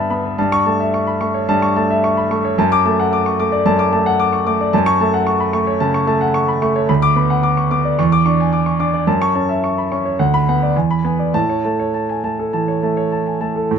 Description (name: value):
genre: classical, virtuoso piano study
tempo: 110 BPM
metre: 4/4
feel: rubato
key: A major from 4.7 s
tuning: A4 = 440 Hz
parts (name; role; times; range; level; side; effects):
- clear concert grand piano; solo; 0.0-13.8 s; D2 to D6; -14 LUFS; equal; none
room: light reverb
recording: minimal, uncompressed stereo recording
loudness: -14 LUFS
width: side -7 dB against mid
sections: 0.0-13.7 A section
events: none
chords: 0.4 A7/G; 2.6 D/F#; 4.7 F#m; 6.9 Bm/D; 8.0 E6; 9.1 F#m7; 10.2 Bm/D; 10.7 E7; 11.3 A